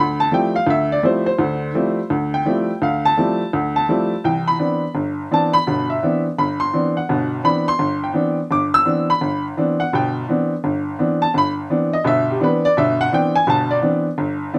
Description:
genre	jazz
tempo	169 BPM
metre	4/4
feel	swing 64% on 8ths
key	C lydian from 4.2 s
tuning	A4 = 440 Hz
part	warm upright piano	solo	0.0-14.6 s	G1 to E6	-19 LUFS	equal	none
room	moderate studio reverb, RT60 0.7 s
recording	none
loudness	-19 LUFS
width	mono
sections	0.0-4.2 A section; 4.2-14.6 A section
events	none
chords	0.0 G13sus4; 4.2 Cmaj9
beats	0.32 0.68 1.03 | 1.39 1.74 2.10 2.45 | 2.81 3.16 3.52 3.88 | 4.23 4.59 4.94 5.30 | 5.65 6.01 6.36 6.72 | 7.08 7.43 7.79 8.14 | 8.50 8.85 9.21 9.56 | 9.92 10.27 10.63 10.98 | 11.34 11.69 12.05 12.40 | 12.76 13.11 13.47 13.82 | 14.18 14.53

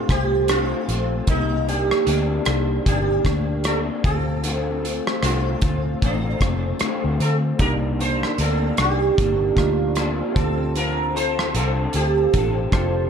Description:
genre	indie pop, bedroom pop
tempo	76 BPM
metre	4/4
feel	swing 60% on 16ths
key	unclear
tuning	A4 = 443 Hz
part	sitar	melody	0.0-13.1 s	D4 to C5	-24 LUFS	right 4 dB	wide subtle chorus, tape echo
part	electric guitar through a small old amp	accompaniment	0.0-13.1 s	C3 to A4	-26 LUFS	left 5 dB	ensemble chorus, warbly pitch drift
part	vintage muted fingered electric bass	bass	0.1-13.1 s	F1 to D3	-24 LUFS	equal	none
part	loose indie drum kit	drums	0.1-13.0 s	hi-hat, kick drum, rim click	-25 LUFS	equal	none
part	warm analog keys	accompaniment	7.6-13.1 s	Bb3 to A5	-30 LUFS	right 6 dB	chorus, cassette tape
room	light reverb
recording	dark, warm production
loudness	-18 LUFS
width	side -7 dB against mid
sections	0.0-13.1 A section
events	none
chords	0.0 Dm7; 1.3 Cm9; 4.0 Dm7; 7.6 Cm9; 10.4 Dm7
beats	0.49 | 1.28 2.07 2.86 3.65 | 4.44 5.23 6.02 6.81 | 7.60 8.39 9.18 9.97 | 10.76 11.54 12.34

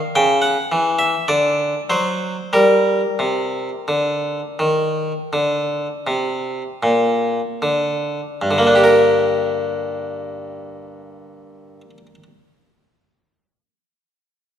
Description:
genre	classical, baroque-style suite movement for harpsichord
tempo	37-55 BPM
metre	4/4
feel	rubato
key	G minor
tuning	A4 = 439 Hz
part	harpsichord	solo	0.0-12.2 s	G2 to G5	-16 LUFS	equal	none
room	moderate scoring stage reverb, RT60 2.0 s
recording	minimal, uncompressed stereo recording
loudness	-16 LUFS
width	side -9 dB against mid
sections	0.0-8.4 A section; 8.4-14.6 B section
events	slowing down 0.0-8.4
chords	0.1 C#madd11; 1.3 D; 2.5 Gm (rootless); 8.4 Gm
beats	0.14 1.28 | 2.52 3.87 5.31 6.82 | 8.40 9.96 11.53

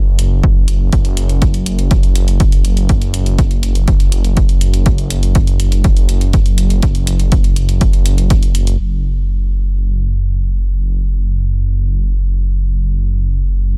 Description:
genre	melodic techno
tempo	122 BPM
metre	4/4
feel	straight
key	unclear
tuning	A4 = 440 Hz
part	dark detuned saw bass	bass	0.0-13.8 s	F#1	-17 LUFS	equal	tube saturation, sidechain pumping
part	electronic hi-hat	drums	0.2-8.8 s	none	-28 LUFS	equal	sidechain pumping on hats
part	electronic kick drum	drums	0.4-8.4 s	none	-16 LUFS	equal	none
room	little or no reverb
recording	none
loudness	-14 LUFS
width	mono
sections	0.0-8.8 A section; 8.8-13.8 B section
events	none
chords	none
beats	0.43 | 0.93 1.42 1.91 2.40 | 2.89 3.38 3.88 4.37 | 4.86 5.35 5.84 6.34 | 6.83 7.32 7.81 8.30 | 8.79 9.29 9.78 10.27 | 10.76 11.25 11.75 12.24 | 12.73 13.22 13.71

